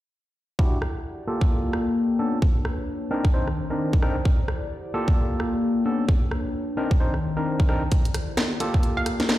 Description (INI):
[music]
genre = UK garage, two-step garage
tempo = 131 BPM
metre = 4/4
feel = swing 60% on 16ths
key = unclear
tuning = A4 = 441 Hz
[part]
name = overdriven tine electric piano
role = stabs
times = 0.6-9.4 s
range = Bb3 to C5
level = -28 LUFS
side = equal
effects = low-pass filter, dub echo
[part]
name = electronic kick drum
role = drums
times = 0.6-8.8 s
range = none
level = -20 LUFS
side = equal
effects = none
[part]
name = warbly tape-like pad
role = texture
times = 1.0-9.4 s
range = Eb3 to Bb5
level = -29 LUFS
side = left 2 dB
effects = chorus, built-in reverb, sidechain pumping
[part]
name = garage drum kit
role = drums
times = 0.8-9.4 s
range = hi-hat, rim click, snare drum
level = -28 LUFS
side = equal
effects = none
[part]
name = hollow square pluck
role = melody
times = 9.0-9.1 s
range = F5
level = -29 LUFS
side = right 2 dB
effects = chorus, dub echo
[sound]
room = light reverb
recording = played on a big sound system in a bare room, large studio reverb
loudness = -21 LUFS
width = side -15 dB against mid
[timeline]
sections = 0.6-9.4 A section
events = filter sweep on tine electric piano 0.6-9.4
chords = 0.6 Em9; 1.3 Gm9; 2.2 Bm9; 3.1 Cm9; 4.3 Em9; 4.9 Gm9; 5.9 Bm9; 6.8 Cm9; 7.9 Em9; 8.6 Gm9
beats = | 0.59 1.05 1.50 1.96 | 2.42 2.88 3.34 3.79 | 4.25 4.71 5.17 5.63 | 6.08 6.54 7.00 7.46 | 7.92 8.38 8.83 9.29